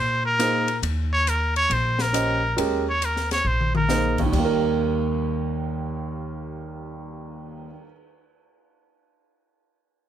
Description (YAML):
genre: modal jazz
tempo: 137 BPM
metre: 4/4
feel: swing 66% on 8ths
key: Eb mixolydian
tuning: A4 = 440 Hz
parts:
  - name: trumpet with straight mute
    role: melody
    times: 0.0-4.2 s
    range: Bb4 to Db5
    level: -22 LUFS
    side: equal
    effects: none
  - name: upright bass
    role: bass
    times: 0.0-7.8 s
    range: Bb1 to Bb2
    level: -27 LUFS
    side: equal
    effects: none
  - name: warm upright piano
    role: accompaniment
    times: 0.4-7.9 s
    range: Eb2 to Eb5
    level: -25 LUFS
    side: right 3 dB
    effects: none
  - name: open jazz drum kit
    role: drums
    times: 0.4-7.7 s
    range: crash cymbal, cymbal swell, hi-hat, kick drum, ride cymbal, rim click, snare drum, toms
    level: -30 LUFS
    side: left 4 dB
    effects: none
room: light reverb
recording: close, detailed microphones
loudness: -20 LUFS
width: side -10 dB against mid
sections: 0.0-4.3 A section; 4.3-7.8 B section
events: muted trumpet solo 0.0-4.3; drum fill 3.4-3.9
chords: 0.0 Eb7sus4; 4.3 Eb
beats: 0.39 | 0.82 1.26 1.70 2.13 | 2.57 3.01 3.45 3.88 | 4.32 4.76 5.20 5.63 | 6.07 6.51 6.95 7.39